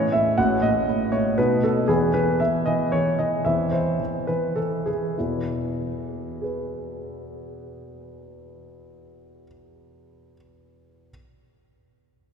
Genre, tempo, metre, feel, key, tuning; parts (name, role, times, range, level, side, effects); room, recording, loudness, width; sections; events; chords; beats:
classical-period piano sonatina; 95-120 BPM; 3/4; rubato; E major; A4 = 440 Hz
warm concert grand piano; solo; 0.0-11.1 s; A1 to F#5; -22 LUFS; equal
wet cathedral reverb, RT60 5.0 s; recorded in a church or concert hall; -21 LUFS; side -6 dB against mid
0.0-5.2 A section; 5.2-8.9 B section
slowing down 1.1-5.2
0.4 F#m/A; 1.4 B7; 1.9 E5; 3.4 Eaug; 5.2 E
| 0.37 0.88 1.38 | 1.88 2.40 2.91 | 3.44 3.99 4.58 | 5.20 5.81 6.42 | 7.04 7.65 8.26